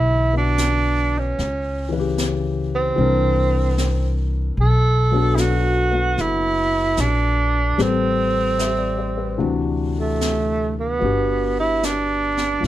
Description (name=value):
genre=jazz ballad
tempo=75 BPM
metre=4/4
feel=swing 69% on 8ths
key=G major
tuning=A4 = 436 Hz
part: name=breathy tenor saxophone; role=melody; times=0.0-12.6 s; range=A3 to A4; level=-21 LUFS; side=right 3 dB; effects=none
part: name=warm baby grand piano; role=accompaniment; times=0.0-12.7 s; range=C3 to E5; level=-24 LUFS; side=left 6 dB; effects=none
part: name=upright bass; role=bass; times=0.0-12.7 s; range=F#1 to D2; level=-22 LUFS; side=equal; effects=none
part: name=jazz brush drum kit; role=drums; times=0.6-12.7 s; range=brushed snare drum, hi-hat, snare drum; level=-31 LUFS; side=left 1 dB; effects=none
room=little or no reverb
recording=none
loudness=-17 LUFS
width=side -14 dB against mid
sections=0.0-12.7 A section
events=none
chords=0.0 G6; 1.4 C#m7b5; 3.0 C9; 4.6 Bm7; 7.8 Am9; 9.4 D9; 11.0 Gmaj7